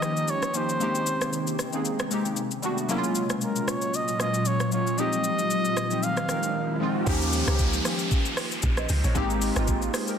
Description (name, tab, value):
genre	amapiano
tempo	115 BPM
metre	4/4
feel	swing 55% on 16ths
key	unclear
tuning	A4 = 441 Hz
part	dark trumpet	melody	0.0-6.8 s	Bb4 to F5	-29 LUFS	right 1 dB	digital delay
part	glassy digital keys	accompaniment	0.0-10.2 s	F3 to Eb5	-28 LUFS	left 1 dB	chorus
part	ethereal airy pad	sustained chords	0.0-7.0 s	Bb2 to G5	-31 LUFS	equal	ensemble chorus, built-in reverb, phaser, sidechain pumping
part	afro-pop drum kit	drums	0.0-10.2 s	hi-hat, kick drum, rim click, shaker	-30 LUFS	equal	none
part	riser and downlifter	sound effects	6.1-10.2 s	none	-32 LUFS	equal	none
part	deep log drum bass	bass	7.1-9.9 s	Ab1 to Eb2	-26 LUFS	equal	none
room	light reverb, digital ambience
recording	dense, heavily limited modern master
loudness	-23 LUFS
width	side -8 dB against mid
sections	0.0-7.1 A section; 7.1-10.2 B section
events	riser 6.1-7.1; drop 7.1-10.2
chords	0.0 Eb7; 0.8 Abmaj7; 2.4 Gmaj7; 2.9 Gbmaj7; 5.0 Fm7; 7.1 Eb7; 9.2 Abmaj7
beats	0.29 | 0.81 1.33 1.85 2.37 | 2.90 3.42 3.94 4.46 | 4.98 5.50 6.03 6.55 | 7.07 7.59 8.11 8.63 | 9.16 9.68